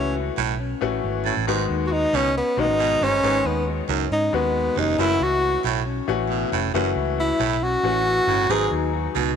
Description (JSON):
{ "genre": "soul", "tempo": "137 BPM", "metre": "4/4", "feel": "straight", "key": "F# dorian", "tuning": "A4 = 440 Hz", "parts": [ { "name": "breathy tenor saxophone", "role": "melody", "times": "0.0-8.7 s", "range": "B3 to G#4", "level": "-22 LUFS", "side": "equal", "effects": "none" }, { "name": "bright upright piano", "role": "accompaniment", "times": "0.0-9.2 s", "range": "D#3 to G#4", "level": "-26 LUFS", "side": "left 10 dB", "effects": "none" }, { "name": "electric guitar through a small old amp", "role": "riff", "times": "0.0-9.3 s", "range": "B3 to G#4", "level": "-34 LUFS", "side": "left 13 dB", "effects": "none" }, { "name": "vintage muted fingered electric bass", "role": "bass", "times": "0.0-9.4 s", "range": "E#1 to G#2", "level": "-28 LUFS", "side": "right 2 dB", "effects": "none" }, { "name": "growling baritone saxophone", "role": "riff", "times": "0.4-9.3 s", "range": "D#2 to B2", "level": "-28 LUFS", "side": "right 15 dB", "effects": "none" } ], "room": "moderate plate reverb, RT60 3.6 s", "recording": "1960s-style stereo with parts hard left and right", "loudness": "-19 LUFS", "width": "side -7 dB against mid", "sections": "0.0-9.4 A section", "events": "tenor saxophone solo 0.0-9.4", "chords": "0.0 F#m7; 1.5 G#m7; 5.0 F#m7; 8.5 G#m7", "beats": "0.16 0.60 1.04 | 1.48 1.92 2.35 2.79 | 3.23 3.67 4.11 4.55 | 4.99 5.43 5.87 6.31 | 6.75 7.18 7.62 8.06 | 8.50 8.94" }